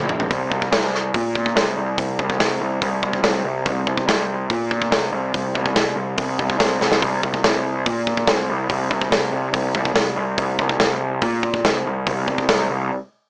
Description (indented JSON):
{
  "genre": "heavy metal",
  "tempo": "143 BPM",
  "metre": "4/4",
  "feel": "straight",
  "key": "unclear",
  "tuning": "A4 = 440 Hz",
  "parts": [
    { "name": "fuzz picked electric bass", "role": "bass", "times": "0.0-12.9 s", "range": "Bb1 to Bb2", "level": "-21 LUFS", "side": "equal", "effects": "overdrive" },
    { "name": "big rock drum kit", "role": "drums", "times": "0.1-12.6 s", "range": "hi-hat, kick drum, snare drum, toms", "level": "-20 LUFS", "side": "equal", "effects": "none" }
  ],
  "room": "little or no reverb",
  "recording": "small speaker sound",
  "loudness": "-18 LUFS",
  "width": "side -32 dB against mid",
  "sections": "0.3-13.3 A section",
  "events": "drum fill 0.0-0.3, 6.8; break 12.9-13.3",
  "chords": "none"
}